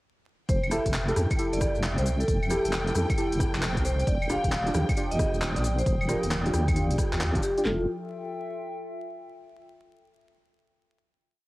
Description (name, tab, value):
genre	UK garage, two-step garage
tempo	134 BPM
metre	4/4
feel	swing 65% on 16ths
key	F major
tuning	A4 = 444 Hz
part	vibraphone with medium hard mallets	melody	0.5-7.8 s	F4 to F5	-32 LUFS	equal	none
part	clear symphonic violin section	sustained chords	0.5-7.7 s	G5	-41 LUFS	left 1 dB	sidechain pumping
part	deep soft wobble bass	bass	0.5-7.9 s	Eb1 to F2	-28 LUFS	equal	chorus
part	garage drum kit	drums	0.5-7.6 s	claves, handclaps, hi-hat, rim click	-33 LUFS	equal	cassette tape
part	punchy analog drum machine	drums	0.5-7.8 s	handclaps, kick drum, snare drum	-28 LUFS	equal	cassette tape
part	maracas	percussion	0.5-7.6 s	none	-44 LUFS	left 6 dB	none
part	warbly tape-like pad	texture	0.5-9.4 s	F3 to Eb6	-38 LUFS	left 1 dB	chorus, built-in reverb, sidechain pumping
part	deep mellow chord stab	stabs	0.7-7.8 s	D4 to A4	-32 LUFS	right 1 dB	chorus
room	light reverb, digital ambience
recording	home recording on cassette, vinyl crackle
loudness	-24 LUFS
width	side -19 dB against mid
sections	0.5-7.7 drop; 7.7-9.4 final chord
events	drop 0.5-7.7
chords	0.5 Fmaj9; 4.1 Ebmaj9; 7.7 Fmaj9